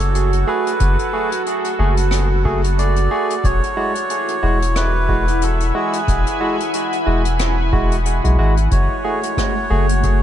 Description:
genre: ambient dub.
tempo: 91 BPM.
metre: 4/4.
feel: swing 56% on 16ths.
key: F# minor.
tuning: A4 = 440 Hz.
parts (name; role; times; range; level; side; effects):
melodica; melody; 0.0-10.2 s; G#4 to D5; -24 LUFS; right 1 dB; dub echo.
deep dark ambient pad; sustained chords; 0.0-10.2 s; E4 to B5; -23 LUFS; right 1 dB; chorus, built-in reverb.
soft dub sub bass; bass; 0.0-10.2 s; E1 to B1; -17 LUFS; equal; none.
jazz brush drum kit; drums; 0.0-10.2 s; hi-hat, rim click; -29 LUFS; left 3 dB; none.
barky tine electric piano; stabs; 0.5-9.9 s; G#3 to G#4; -23 LUFS; right 1 dB; dub echo.
electronic kick drum; drums; 0.8-10.2 s; none; -23 LUFS; equal; none.
bubbling stepped-filter texture; texture; 9.0-10.2 s; A3 to G#5; -26 LUFS; right 1 dB; chorus, built-in reverb.
room: light reverb, small room ambience.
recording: nothing above 10.8 kHz.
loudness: -15 LUFS.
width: side -11 dB against mid.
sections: 0.0-8.7 A section; 8.7-10.2 A section.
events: none.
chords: 0.0 F#madd9; 3.4 Eadd9; 8.7 F#madd9.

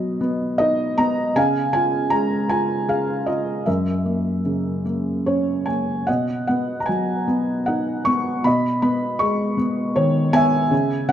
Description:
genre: classical, lyrical solo piano.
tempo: 78 BPM.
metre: 3/4.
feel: rubato.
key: B major.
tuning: A4 = 438 Hz.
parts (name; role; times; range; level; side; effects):
felt-muted upright piano; solo; 0.0-11.1 s; F#2 to C#6; -18 LUFS; equal; none.
room: moderate recital hall reverb, RT60 1.7 s.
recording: dark, warm production.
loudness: -18 LUFS.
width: side -10 dB against mid.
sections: 0.0-11.1 A section.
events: none.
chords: 0.0 B; 1.4 C#; 3.7 F#; 6.1 B; 8.4 G#m/B.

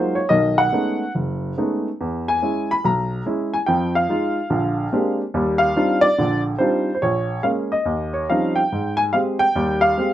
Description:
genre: solo jazz.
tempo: 143 BPM.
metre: 4/4.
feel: swing 65% on 8ths, rubato.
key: unclear.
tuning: A4 = 438 Hz.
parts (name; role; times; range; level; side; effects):
warm upright piano; solo; 0.0-10.1 s; F#1 to B5; -18 LUFS; equal; none.
room: moderate studio reverb, RT60 0.6 s.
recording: rough home demo mix.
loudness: -18 LUFS.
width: side -12 dB against mid.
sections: 0.0-8.7 A section; 8.7-10.1 B section.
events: none.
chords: 0.3 B13; 2.0 E6; 3.7 Fm7; 4.5 Bb13; 5.3 Ebmaj13; 7.0 Bbm7; 7.9 Eb13; 8.7 Abmaj7.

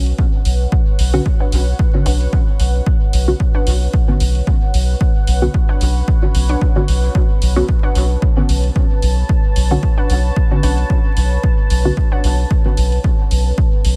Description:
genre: dub techno.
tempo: 112 BPM.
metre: 4/4.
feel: swing 55% on 16ths.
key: B minor.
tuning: A4 = 440 Hz.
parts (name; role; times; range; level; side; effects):
deep dark ambient pad; sustained chords; 0.0-14.0 s; B4 to A5; -30 LUFS; equal; chorus, built-in reverb, sidechain pumping.
filtered dub chord stab; stabs; 0.0-14.0 s; D3 to F#4; -25 LUFS; equal; chorus, phaser, cassette tape, sidechain pumping, dub echo.
soft dub sub bass; bass; 0.0-14.0 s; B1; -17 LUFS; equal; sidechain pumping.
electronic hi-hat; drums; 0.1-14.0 s; none; -32 LUFS; equal; none.
electronic kick drum; drums; 0.2-13.7 s; none; -18 LUFS; equal; none.
warbly dusty pluck; riff; 1.4-12.2 s; D4 to F#5; -31 LUFS; equal; chorus, sidechain pumping, dub echo.
room: little or no reverb.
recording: vinyl crackle.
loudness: -15 LUFS.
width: mono.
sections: 0.0-14.0 A section.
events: filter sweep on synth stab 0.0-14.0.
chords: 0.0 Bmadd9.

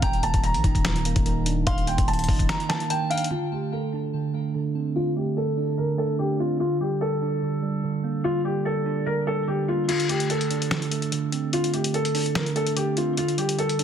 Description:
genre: hip hop, trap.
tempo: 146 BPM.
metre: 4/4.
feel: half-time.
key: D phrygian.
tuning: A4 = 440 Hz.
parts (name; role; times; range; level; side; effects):
felt-muted upright piano; melody; 0.0-13.8 s; F4 to Bb5; -27 LUFS; left 2 dB; low-pass filter, digital delay.
soft synth bell; second line; 0.0-3.3 s; G5 to C6; -35 LUFS; left 2 dB; chorus, digital delay.
mellow tine electric piano; accompaniment; 0.0-13.8 s; D3 to Eb4; -26 LUFS; right 5 dB; phaser, low-pass filter.
distorted 808-style bass; bass; 0.0-2.5 s; Eb1 to Bb1; -27 LUFS; left 1 dB; distortion.
dusty soul sampler-style drum kit; drums; 0.0-3.3, 9.9-13.8 s; crash cymbal, finger snaps, hi-hat, kick drum, snare drum; -26 LUFS; left 1 dB; soft clipping on snare.
room: light reverb, digital ambience.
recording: dense, heavily limited modern master.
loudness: -22 LUFS.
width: side -8 dB against mid.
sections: 0.0-3.3 A section; 3.3-9.9 B section; 9.9-13.8 C section.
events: break 2.5-3.3; filter sweep 3.3-9.9; kick muted 9.9-13.8.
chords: 0.0 Eb5; 3.3 D5; 6.6 Gm; 9.9 D5; 13.2 G5.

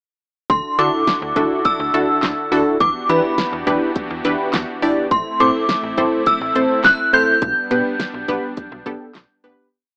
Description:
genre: synth-pop.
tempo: 104 BPM.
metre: 4/4.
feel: straight.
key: G major.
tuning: A4 = 440 Hz.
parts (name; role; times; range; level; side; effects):
synth chime; melody; 0.5-9.4 s; B5 to G6; -20 LUFS; equal; ensemble chorus.
brassy analog pad; sustained chords; 0.5-9.7 s; D3 to A4; -29 LUFS; equal; chorus.
slap-like FM bass; bass; 0.5-9.6 s; G1 to E3; -31 LUFS; equal; none.
pop drum kit; drums; 0.5-9.6 s; handclaps, hi-hat, kick drum, snare drum; -26 LUFS; equal; none.
funky polysynth comp; accompaniment; 0.8-9.7 s; B3 to D5; -21 LUFS; equal; chorus.
room: light reverb.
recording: rough home demo mix, AM radio sound.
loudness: -18 LUFS.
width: mono.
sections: 0.5-9.7 chorus.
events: fade-out 7.4-9.7.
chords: 0.5 Dadd9; 2.8 Em7; 5.1 Am; 7.4 G/B.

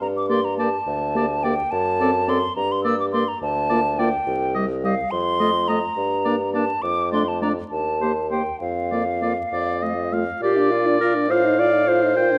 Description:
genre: quick classical-period movement for wind quintet.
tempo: 70 BPM (dotted quarters).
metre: 6/8.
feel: rubato.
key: Bb major from 3.4 s.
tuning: A4 = 440 Hz.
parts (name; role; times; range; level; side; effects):
hollow concert flute; melody; 0.0-12.4 s; D5 to E6; -27 LUFS; equal; none.
mellow bassoon; bass; 0.0-12.4 s; C2 to Bb2; -28 LUFS; equal; none.
clear oboe; second line; 0.3-12.4 s; C5 to G5; -30 LUFS; equal; none.
mellow French horn; accompaniment; 0.3-12.4 s; G3 to F4; -29 LUFS; equal; none.
mellow clarinet; accompaniment; 0.3-12.4 s; D4 to D5; -26 LUFS; equal; none.
room: moderate recital hall reverb, RT60 1.6 s.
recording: vinyl crackle.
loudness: -21 LUFS.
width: mono.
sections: 0.0-10.4 A section; 10.4-12.4 B section.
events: none.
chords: 0.0 Gm; 1.7 D7/F#; 2.6 Gm; 3.4 Bb/D; 4.3 Cm; 5.1 F7; 6.0 Gm; 6.8 Dm/F; 7.7 Cm7/Eb; 8.6 Bb/F; 9.5 F; 10.4 Bb; 11.3 F7/A.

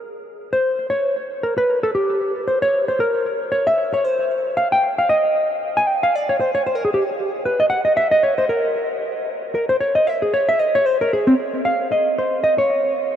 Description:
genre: jazz.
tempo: 229 BPM.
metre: 4/4.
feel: swing 58% on 8ths.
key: unclear.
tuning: A4 = 440 Hz.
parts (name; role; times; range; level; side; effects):
hollow-body jazz guitar; solo; 0.5-12.9 s; C4 to Ab5; -17 LUFS; equal; tape echo.
room: wet huge ambient reverb, RT60 7.1 s.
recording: dreamy mix soaked in reverb.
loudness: -17 LUFS.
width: side -9 dB against mid.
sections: 0.0-6.4 A section; 6.4-13.2 A section.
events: hollow-body jazz guitar solo 0.0-13.2.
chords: none.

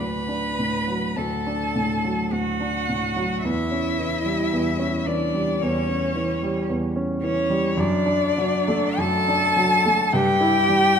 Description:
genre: classical, slow romantic movement for piano trio.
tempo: 48-57 BPM.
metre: 4/4.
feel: rubato.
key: D major.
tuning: A4 = 438 Hz.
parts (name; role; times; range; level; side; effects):
rich violin; melody; 0.0-11.0 s; C#5 to B5; -24 LUFS; left 6 dB; none.
rich cello; second line; 0.0-11.0 s; C#4 to B4; -26 LUFS; right 6 dB; none.
warm grand piano; accompaniment; 0.0-11.0 s; D2 to E4; -23 LUFS; right 1 dB; none.
room: wet scoring stage reverb, RT60 1.7 s.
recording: none.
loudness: -20 LUFS.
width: side -7 dB against mid.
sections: 0.0-11.0 A section.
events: none.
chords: 0.0 D; 3.4 C#dim/E; 7.8 D/F#; 10.1 Em/G.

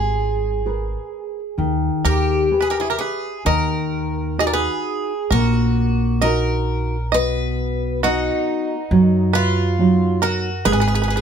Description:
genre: fado-style ballad.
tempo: 63-70 BPM.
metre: 4/4.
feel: rubato.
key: G# harmonic minor, Eb minor from 3.5 s.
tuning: A4 = 440 Hz.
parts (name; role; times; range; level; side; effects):
picked twelve-string acoustic guitar; melody; 0.0-11.2 s; D#4 to B4; -23 LUFS; left 1 dB; none.
nylon-string guitar; accompaniment; 0.0-11.2 s; B2 to B4; -21 LUFS; equal; none.
upright bass; bass; 0.0-11.2 s; G#1 to F#2; -22 LUFS; right 1 dB; none.
bluegrass banjo; second line; 2.0-11.2 s; F#4 to Eb5; -24 LUFS; right 5 dB; none.
room: little or no reverb.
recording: close, detailed microphones, faint mains hum.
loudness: -17 LUFS.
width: side -7 dB against mid.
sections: 0.0-3.5 A section; 3.5-11.2 B section.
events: none.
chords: 0.0 G#madd9; 3.5 Ebm; 7.1 B; 10.6 Abm.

